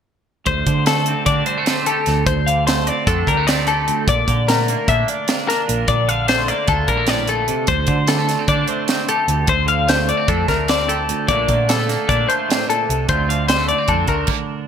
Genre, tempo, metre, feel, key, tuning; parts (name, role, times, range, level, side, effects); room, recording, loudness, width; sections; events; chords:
math rock and midwest emo; 299 BPM (eighths); 9/8; straight; D minor; A4 = 437 Hz
twangy electric guitar; accompaniment; 0.5-14.7 s; D2 to G4; -23 LUFS; right 10 dB; lush chorus
twelve-string electric guitar; arpeggios; 0.5-14.3 s; A4 to F5; -19 LUFS; left 6 dB; lush chorus
hollow-body short-scale picked electric bass; bass; 0.5-14.2 s; Bb1 to D3; -22 LUFS; right 1 dB
crisp fusion drum kit; drums; 0.5-14.4 s; crash cymbal, hi-hat, kick drum, snare drum; -22 LUFS; right 1 dB; gated reverb
moderate plate reverb, RT60 2.0 s, studio reverb; bright 1980s-style digital production; -15 LUFS; side -8 dB against mid
0.5-14.7 A section
stop 14.3-14.7
0.5 D7(no3); 4.1 Bbmaj7; 7.7 D7(no3); 11.3 Bbmaj7; 13.1 Dm7